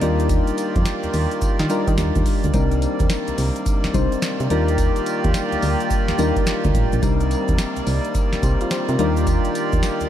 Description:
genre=R&B, new jack swing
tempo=107 BPM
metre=4/4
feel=swing 64% on 16ths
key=unclear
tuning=A4 = 440 Hz
part: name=soft electric-piano-like synth keys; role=accompaniment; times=0.0-10.1 s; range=G3 to C5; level=-23 LUFS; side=left 3 dB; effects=chorus
part: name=accordion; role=sustained chords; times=0.0-10.1 s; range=C3 to D5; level=-26 LUFS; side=right 2 dB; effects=none
part: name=solid FM bass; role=bass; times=0.0-10.1 s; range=A1 to Eb3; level=-22 LUFS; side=equal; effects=none
part: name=booming analog drum machine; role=drums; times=0.0-10.1 s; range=hi-hat, kick drum, snare drum, tambourine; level=-22 LUFS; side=equal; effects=none
part: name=tube shaker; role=percussion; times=0.0-10.1 s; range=none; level=-43 LUFS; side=right 10 dB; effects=none
room=light reverb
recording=dark, warm production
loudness=-18 LUFS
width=side -11 dB against mid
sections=0.0-10.1 A section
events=none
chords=0.0 Ebmaj9; 2.5 Cm9; 4.5 Ebmaj9; 7.0 Cm9; 9.0 Ebmaj9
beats=| 0.30 0.86 1.42 1.98 | 2.54 3.10 3.66 4.22 | 4.78 5.34 5.90 6.46 | 7.03 7.59 8.15 8.71 | 9.27 9.83

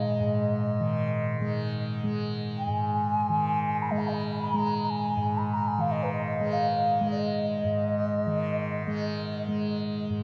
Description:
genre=world meditative, free-time meditation music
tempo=free time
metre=none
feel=none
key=unclear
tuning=A4 = 441 Hz
part: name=mellow hollow xiao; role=melody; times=0.0-9.5 s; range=Cb5 to Cb6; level=-32 LUFS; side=equal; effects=none
part: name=tanpura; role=drone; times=0.0-10.2 s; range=Ab2 to Ab3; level=-31 LUFS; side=equal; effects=none
part: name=bronze singing bowl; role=texture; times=0.0-4.3 s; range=Bb2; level=-38 LUFS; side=equal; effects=none
room=wet huge ambient reverb, RT60 4.7 s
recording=dark, warm production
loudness=-28 LUFS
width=mono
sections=0.0-10.2 A section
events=none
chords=none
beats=free time

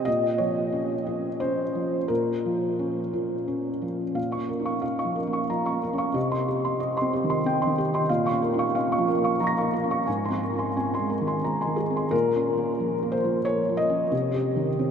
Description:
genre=neoclassical minimalist piano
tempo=85-94 BPM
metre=3/4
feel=rubato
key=Bb dorian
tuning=A4 = 441 Hz
part: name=felt-muted upright piano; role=solo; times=0.0-14.9 s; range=Ab2 to Bb6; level=-23 LUFS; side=equal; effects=none
room=wet huge ambient reverb, RT60 7.6 s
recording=in a vast, echoing space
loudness=-23 LUFS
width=side -7 dB against mid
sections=0.0-4.2 A section; 4.2-12.1 B section; 12.1-14.9 C section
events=none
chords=0.1 Bbm; 6.2 Cm; 8.1 Bbm; 10.1 Abadd9; 12.1 Bbm; 14.1 Cm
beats=| 0.07 0.72 1.40 | 2.09 2.79 3.48 | 4.17 4.84 5.50 | 6.16 6.81 7.45 | 8.09 8.73 9.39 | 10.07 10.76 11.44 | 12.13 12.80 13.46 | 14.12 14.78

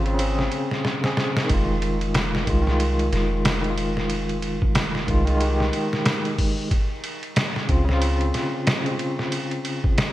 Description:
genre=trip hop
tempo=92 BPM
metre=4/4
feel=swing 59% on 16ths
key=F minor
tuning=A4 = 441 Hz
part: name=overdriven tine electric piano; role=accompaniment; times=0.0-10.1 s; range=Db3 to Ab4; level=-25 LUFS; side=equal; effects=tremolo, tape echo
part: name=soft 808-style bass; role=bass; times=0.0-8.3 s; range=F1 to Db2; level=-24 LUFS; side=equal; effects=none
part: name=trip hop sampler-style drum kit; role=drums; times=0.1-10.1 s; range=hi-hat, kick drum, ride cymbal, snare drum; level=-24 LUFS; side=equal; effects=gated reverb
room=light reverb, digital ambience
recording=bright 1980s-style digital production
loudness=-20 LUFS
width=side -15 dB against mid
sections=0.0-1.5 A section; 1.5-10.1 B section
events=drum fill 0.8-1.5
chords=0.0 Dbmaj7(no3); 1.5 Fm7; 6.7 Dbmaj7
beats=0.19 0.84 | 1.49 2.15 2.80 3.45 | 4.10 4.75 5.41 6.06 | 6.71 7.36 8.02 8.67 | 9.32 9.97

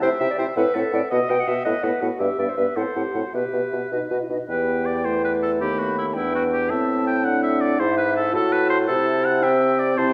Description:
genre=quick classical-period movement for wind quintet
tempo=110 BPM (dotted quarters)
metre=6/8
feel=rubato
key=E minor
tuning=A4 = 440 Hz
part: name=concert flute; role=melody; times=0.0-10.1 s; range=D#5 to B5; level=-34 LUFS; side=equal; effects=none
part: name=warm oboe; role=second line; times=0.0-10.1 s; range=E4 to G5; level=-28 LUFS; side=equal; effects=none
part: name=mellow clarinet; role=accompaniment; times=0.0-10.1 s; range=B3 to G5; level=-29 LUFS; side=equal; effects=none
part: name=warm French horn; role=accompaniment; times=0.0-10.1 s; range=A3 to F#4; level=-31 LUFS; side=equal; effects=none
part: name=mellow bassoon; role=bass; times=0.0-10.1 s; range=D#2 to C3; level=-25 LUFS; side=equal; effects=none
room=wet recital hall reverb, RT60 1.6 s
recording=studio reverb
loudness=-22 LUFS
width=mono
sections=0.0-4.5 A section; 4.5-10.1 B section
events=none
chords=0.0 C; 0.6 F#m7b5/A; 1.1 B; 1.6 B5/A; 2.2 Em/G; 2.8 F#dim/A; 3.3 Em/B; 3.9 B; 4.5 Em; 5.6 B/D#; 6.2 Em; 6.7 Am; 7.8 E/G#; 8.3 Asus2; 8.9 Am/C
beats=| 0.01 0.56 | 1.10 1.65 | 2.20 2.76 | 3.33 3.91 | 4.49 5.05 | 5.61 6.15 | 6.71 7.25 | 7.79 8.34 | 8.88 9.43 | 9.97

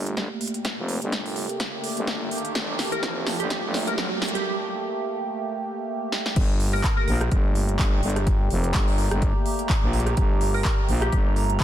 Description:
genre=bass house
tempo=126 BPM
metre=4/4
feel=swing 56% on 16ths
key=G minor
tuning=A4 = 440 Hz
part: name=sweeping resonant pad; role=sustained chords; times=0.0-11.6 s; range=A3 to G4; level=-31 LUFS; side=right 2 dB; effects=chorus, phaser, sidechain pumping
part: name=growling FM bass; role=bass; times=0.0-11.6 s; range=F1 to Bb1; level=-25 LUFS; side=equal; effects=tube saturation, sidechain pumping, high-pass filter
part: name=riser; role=sound effects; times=0.4-4.5 s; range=none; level=-34 LUFS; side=right 2 dB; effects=none
part: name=warbly tape-like pad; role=texture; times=0.3-11.6 s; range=G4 to Bb5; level=-36 LUFS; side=right 1 dB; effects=chorus, built-in reverb, sidechain pumping
part: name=big-room dance drum kit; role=drums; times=0.1-11.6 s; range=crash cymbal, handclaps, hi-hat, rim click, snare drum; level=-29 LUFS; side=equal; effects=high-pass filter on hats, high-pass filter on snare, high-pass filter on cymbals, high-pass filter on room
part: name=electronic kick drum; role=drums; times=0.2-11.6 s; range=none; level=-24 LUFS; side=equal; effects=high-pass filter on kick
part: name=glassy wavetable pluck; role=melody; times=2.9-7.2, 10.5-11.6 s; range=G4 to Bb4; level=-32 LUFS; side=equal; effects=chorus, dub echo
room=light reverb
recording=dense, heavily limited modern master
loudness=-22 LUFS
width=side -11 dB against mid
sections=0.0-6.4 A section; 6.4-11.6 B section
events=build-up 0.0-6.4; drum fill 0.0-4.5, 6.1; riser 0.4-4.5; break 4.5-6.4; drop 6.4-11.6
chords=0.0 Gmadd9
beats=0.17 | 0.65 1.12 1.60 2.08 | 2.55 3.03 3.50 3.98 | 4.46 4.93 5.41 5.89 | 6.36 6.84 7.31 7.79 | 8.27 8.74 9.22 9.70 | 10.17 10.65 11.12 11.60

